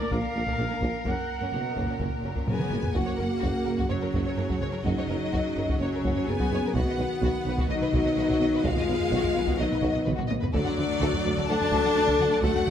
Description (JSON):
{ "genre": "cinematic, epic orchestral film score", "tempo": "127 BPM", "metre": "4/4", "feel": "straight", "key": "F# major", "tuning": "A4 = 441 Hz", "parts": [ { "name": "warm symphonic violin section", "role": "melody", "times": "0.0-12.7 s", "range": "F#4 to F#5", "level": "-37 LUFS", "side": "left 3 dB", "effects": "none" }, { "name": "rich symphonic violin section", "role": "second line", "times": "0.0-12.7 s", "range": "C#4 to A5", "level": "-33 LUFS", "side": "left 3 dB", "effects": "none" }, { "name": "clear symphonic viola section", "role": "accompaniment", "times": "0.0-12.7 s", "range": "F#3 to D4", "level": "-32 LUFS", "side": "right 1 dB", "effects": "none" }, { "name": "dark French horn section", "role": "sustained chords", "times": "0.0-12.7 s", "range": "C#3 to A4", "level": "-29 LUFS", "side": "left 4 dB", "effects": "none" }, { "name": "clear trumpet section", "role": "stabs", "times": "0.0-2.5 s", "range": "D5 to F#5", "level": "-32 LUFS", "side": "right 2 dB", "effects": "none" }, { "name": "rich symphonic cello section", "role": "bass", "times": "0.0-12.7 s", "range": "F#2 to D3", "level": "-34 LUFS", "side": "right 2 dB", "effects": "none" }, { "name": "rich symphonic double bass section", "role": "bass", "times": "0.1-12.7 s", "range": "F#1 to D2", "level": "-35 LUFS", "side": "right 2 dB", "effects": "none" }, { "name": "warm tuba", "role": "bass", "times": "0.1-12.5 s", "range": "F#1 to D2", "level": "-35 LUFS", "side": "right 4 dB", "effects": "none" }, { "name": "taiko ensemble", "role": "drums", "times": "0.1-12.7 s", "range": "none", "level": "-32 LUFS", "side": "equal", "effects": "none" }, { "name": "dark trombone section", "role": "sustained chords", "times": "3.0-12.7 s", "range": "C#3 to C#4", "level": "-36 LUFS", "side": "right 3 dB", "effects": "none" } ], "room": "moderate scoring stage reverb, RT60 1.8 s", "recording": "none", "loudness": "-24 LUFS", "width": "side -9 dB against mid", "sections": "0.0-3.0 A section; 3.0-12.7 B section", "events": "drum fill 2.5-3.0, 10.1-10.5", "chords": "0.0 A#; 1.1 F#; 6.7 B; 10.5 D" }